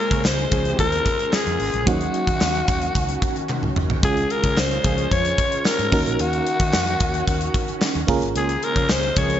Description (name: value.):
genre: 1980s-style pop.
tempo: 111 BPM.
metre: 4/4.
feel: straight.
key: unclear.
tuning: A4 = 440 Hz.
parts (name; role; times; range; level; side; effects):
breathy alto saxophone; melody; 0.0-9.4 s; Gb4 to Db5; -23 LUFS; left 2 dB; slapback echo.
FM electric piano with tremolo; accompaniment; 0.0-9.4 s; Gb3 to Bb4; -27 LUFS; right 4 dB; none.
lush unison pad; sustained chords; 0.0-9.4 s; Db3 to C5; -31 LUFS; right 1 dB; chorus, phaser.
analog synth brass; stabs; 0.1-0.9, 4.4-5.1, 8.8-9.4 s; F3 to Db5; -31 LUFS; left 1 dB; chorus.
fretless electric bass; bass; 0.1-9.4 s; Gb1 to Eb3; -26 LUFS; equal; none.
gated 80s drum kit; drums; 0.1-9.4 s; hi-hat, kick drum, snare drum, tambourine, toms; -23 LUFS; equal; none.
group handclap; percussion; 0.2-9.0 s; none; -40 LUFS; right 2 dB; none.
room: moderate lush hall reverb, RT60 2.3 s.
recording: big arena sound, nothing above 7.7 kHz.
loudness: -18 LUFS.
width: side -10 dB against mid.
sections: 0.0-9.4 A section.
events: drum fill 3.5-4.0.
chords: 0.0 Bbm7; 1.9 Ebm7; 4.0 Dbmaj7; 5.9 Ebm7; 8.1 Bbm7.